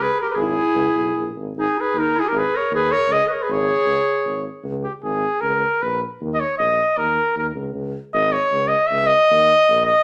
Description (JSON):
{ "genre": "balkan folk", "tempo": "155 BPM", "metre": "2/4", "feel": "swing 53% on 16ths", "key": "C# dorian sharp4", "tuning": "A4 = 440 Hz", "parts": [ { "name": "warm cornet", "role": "melody", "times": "0.0-10.0 s", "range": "G4 to E5", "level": "-20 LUFS", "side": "equal", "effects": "none" }, { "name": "warm clarinet", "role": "second line", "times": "0.0-4.5 s", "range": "D#4 to B4", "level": "-24 LUFS", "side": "equal", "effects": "none" }, { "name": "mellow tuba", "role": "bass", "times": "0.0-9.9 s", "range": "G#1 to D#2", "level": "-30 LUFS", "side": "equal", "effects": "none" } ], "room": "moderate large studio reverb, RT60 0.9 s", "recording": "none", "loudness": "-20 LUFS", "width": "mono", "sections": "0.0-4.7 A section; 4.7-10.0 B section", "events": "cornet solo 4.7-10.0", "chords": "0.0 C#m; 1.5 G#5; 3.1 C#5; 6.2 D#5; 7.8 C#5; 9.3 D#5" }